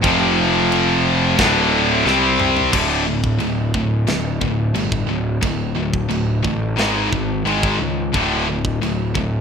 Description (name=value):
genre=heavy metal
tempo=89 BPM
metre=4/4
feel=straight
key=D phrygian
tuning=A4 = 440 Hz
part: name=high-gain distorted guitar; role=riff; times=0.0-9.4 s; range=D2 to C4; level=-20 LUFS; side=left 7 dB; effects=distortion
part: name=high-gain distorted guitar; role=riff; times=0.0-9.4 s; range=D2 to C4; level=-23 LUFS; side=right 12 dB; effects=distortion
part: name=tight distorted guitar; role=riff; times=0.0-2.7 s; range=D2 to C4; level=-18 LUFS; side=left 1 dB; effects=distortion
part: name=fuzz picked electric bass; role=bass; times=0.0-9.4 s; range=D1 to C#2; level=-23 LUFS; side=equal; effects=overdrive
part: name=tight metal drum kit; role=drums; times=0.0-9.3 s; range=china cymbal, crash cymbal, kick drum, snare drum, toms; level=-25 LUFS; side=right 1 dB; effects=none
room=light reverb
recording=rough home demo mix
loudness=-16 LUFS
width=side -6 dB against mid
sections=0.0-2.7 A section; 2.7-9.4 B section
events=drum fill 2.1-2.7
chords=0.0 F5; 1.4 D5; 2.1 C5; 2.7 D5; 6.8 G#5; 8.1 D5